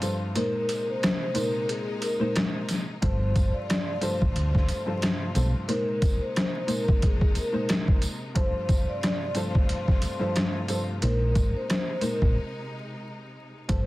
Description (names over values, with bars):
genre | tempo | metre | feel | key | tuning
hip hop, boom-bap hip-hop | 90 BPM | 4/4 | swing 56% on 16ths | unclear | A4 = 440 Hz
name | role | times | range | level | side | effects
dark upright piano | accompaniment | 0.0-13.9 s | G2 to C5 | -31 LUFS | equal | cassette tape
bright studio string section | sustained chords | 0.0-13.7 s | C3 to F4 | -38 LUFS | left 1 dB | none
trip hop sampler-style drum kit | drums | 0.0-13.9 s | hi-hat, kick drum, rim click, snare drum | -25 LUFS | equal | overdrive
tambourine | percussion | 0.0-12.2 s | none | -42 LUFS | right 2 dB | none
vibraphone with soft mallets | melody | 0.4-13.9 s | Ab4 to D5 | -31 LUFS | left 1 dB | digital delay
woody fretless electric bass | bass | 3.0-5.5, 11.0-13.9 s | G1 to D2 | -25 LUFS | equal | none
room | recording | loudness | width
small room ambience | dense, heavily limited modern master, vinyl crackle | -23 LUFS | side -18 dB against mid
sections
0.0-13.7 A section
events
break 0.0-3.0, 12.4-13.7; kick muted 0.4-3.0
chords
0.4 Bb9sus4; 3.0 G9sus4; 5.7 Bb9sus4; 8.4 G9sus4; 11.0 Bb9sus4